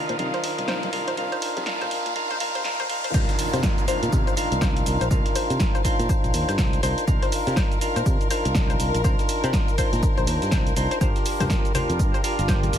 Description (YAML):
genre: deep house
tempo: 122 BPM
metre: 4/4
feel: swing 60% on 16ths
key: C minor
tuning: A4 = 440 Hz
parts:
  - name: percussive tonewheel organ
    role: stabs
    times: 0.0-12.8 s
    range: D4 to C5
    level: -27 LUFS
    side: right 1 dB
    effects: overdrive, stopped rotary speaker, sidechain pumping, low-pass filter, tape echo
  - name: riser and downlifter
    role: sound effects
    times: 0.0-7.1 s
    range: none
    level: -35 LUFS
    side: right 1 dB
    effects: none
  - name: analog string pad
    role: texture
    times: 0.0-3.2, 11.0-12.8 s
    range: Bb4 to Eb6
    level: -42 LUFS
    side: equal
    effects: none
  - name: clear studio string section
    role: texture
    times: 0.0-12.8 s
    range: Eb3 to G5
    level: -32 LUFS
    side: left 4 dB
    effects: sidechain pumping
  - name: analog pluck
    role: arpeggios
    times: 0.1-12.6 s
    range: C5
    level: -33 LUFS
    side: left 5 dB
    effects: chorus, sidechain pumping, tape echo
  - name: modern bright fingered electric bass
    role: bass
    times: 0.1-12.8 s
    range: G1 to C3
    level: -27 LUFS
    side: equal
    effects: sidechain pumping
  - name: punchy analog drum machine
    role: drums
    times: 0.1-12.8 s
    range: crash cymbal, hi-hat, shaker, snare drum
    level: -30 LUFS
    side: right 1 dB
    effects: none
  - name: congas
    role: percussion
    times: 0.2-2.9, 11.4-12.7 s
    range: none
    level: -32 LUFS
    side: left 2 dB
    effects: none
  - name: breakbeat sampler-style drum kit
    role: drums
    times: 3.1-12.8 s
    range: hi-hat, snare drum, tambourine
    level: -39 LUFS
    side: equal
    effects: none
  - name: electronic kick drum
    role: drums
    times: 3.1-12.6 s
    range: none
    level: -23 LUFS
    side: equal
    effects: none
room: light reverb, digital ambience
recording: high-pass filter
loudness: -20 LUFS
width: side -10 dB against mid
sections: 0.0-3.1 A section; 3.1-12.8 B section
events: build-up 0.0-3.1; riser 0.0-3.1; filter sweep on synth arpeggio sound 0.0-3.1; drop 3.1-12.8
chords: 0.0 Cm11; 11.0 Gm7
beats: 0.19 0.68 | 1.18 1.67 2.16 2.65 | 3.14 3.63 4.13 4.62 | 5.11 5.60 6.09 6.58 | 7.08 7.57 8.06 8.55 | 9.04 9.54 10.03 10.52 | 11.01 11.50 11.99 12.49